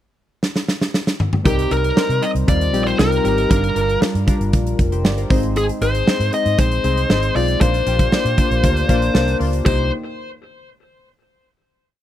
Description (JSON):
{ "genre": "1980s-style pop", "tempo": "117 BPM", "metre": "4/4", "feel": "straight", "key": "C minor", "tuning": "A4 = 439 Hz", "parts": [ { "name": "big rock drum kit", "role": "drums", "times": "0.4-9.8 s", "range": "crash cymbal, hi-hat, kick drum, snare drum, toms", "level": "-19 LUFS", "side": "right 1 dB", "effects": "none" }, { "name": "glassy digital keys", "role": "accompaniment", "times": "1.4-9.9 s", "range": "G3 to D5", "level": "-22 LUFS", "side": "left 2 dB", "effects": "chorus" }, { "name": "bluesy overdriven lead guitar", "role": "melody", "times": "1.5-9.9 s", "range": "G4 to Eb5", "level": "-21 LUFS", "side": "left 2 dB", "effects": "distortion" }, { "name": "vintage muted fingered electric bass", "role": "bass", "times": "1.5-9.9 s", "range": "F1 to C3", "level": "-20 LUFS", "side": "equal", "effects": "none" } ], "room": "little or no reverb", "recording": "dry, close 1970s-style studio recording", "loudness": "-15 LUFS", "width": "side -12 dB against mid", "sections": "0.0-1.5 pickup bar; 1.5-9.7 verse; 9.7-11.7 final chord", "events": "drum fill 0.4-1.5", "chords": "0.0 N.C.; 1.5 Cm7; 3.5 Gm7; 5.3 Ab; 7.6 Bbadd9; 9.7 Cm7" }